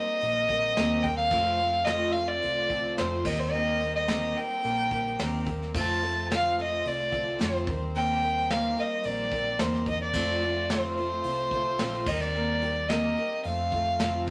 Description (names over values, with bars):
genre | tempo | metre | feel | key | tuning
folk rock and heartland rock | 109 BPM | 4/4 | straight | F mixolydian | A4 = 439 Hz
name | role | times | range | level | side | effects
dark fiddle | melody | 0.0-14.3 s | C5 to A5 | -30 LUFS | equal | none
picked twelve-string acoustic guitar | accompaniment | 0.0-14.3 s | F2 to G4 | -35 LUFS | equal | none
warm studio string section | sustained chords | 0.0-14.3 s | G3 to C5 | -46 LUFS | equal | none
hollow-body short-scale picked electric bass | bass | 0.2-14.3 s | Bb1 to F2 | -38 LUFS | equal | none
soft brush drum kit | drums | 0.2-14.3 s | crash cymbal, hi-hat, kick drum, snare drum | -36 LUFS | equal | none
room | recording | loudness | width
moderate studio reverb, RT60 0.7 s | none | -28 LUFS | mono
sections
0.0-14.3 A section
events
none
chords
0.0 Eb6; 1.3 F; 3.3 Eb6; 5.7 F; 7.7 Eb6; 10.1 F; 12.1 Eb6; 13.4 F